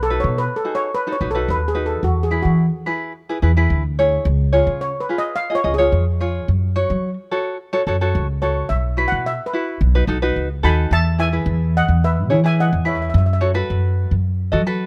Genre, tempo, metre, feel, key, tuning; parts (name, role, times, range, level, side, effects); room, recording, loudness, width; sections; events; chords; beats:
calypso; 108 BPM; 4/4; straight; E major; A4 = 440 Hz
steel pan; melody; 0.0-13.4 s; F#4 to B5; -25 LUFS; equal
upright bass; bass; 0.0-14.9 s; B1 to F#3; -20 LUFS; equal
tenor ukulele; accompaniment; 0.1-14.9 s; D#4 to D#5; -24 LUFS; equal
little or no reverb; close, detailed microphones; -19 LUFS; mono
0.0-10.9 A section; 10.9-14.9 B section
steel pan solo 0.0-10.9
0.0 B7; 2.0 E; 4.3 C#; 6.5 F#m; 8.7 Bsus4; 9.8 B7; 10.9 Emaj7; 13.1 F#m
0.37 0.93 1.48 | 2.04 2.59 3.15 3.70 | 4.26 4.81 5.37 5.92 | 6.48 7.03 7.59 8.14 | 8.70 9.26 9.81 10.37 | 10.92 11.48 12.03 12.59 | 13.14 13.70 14.25 14.81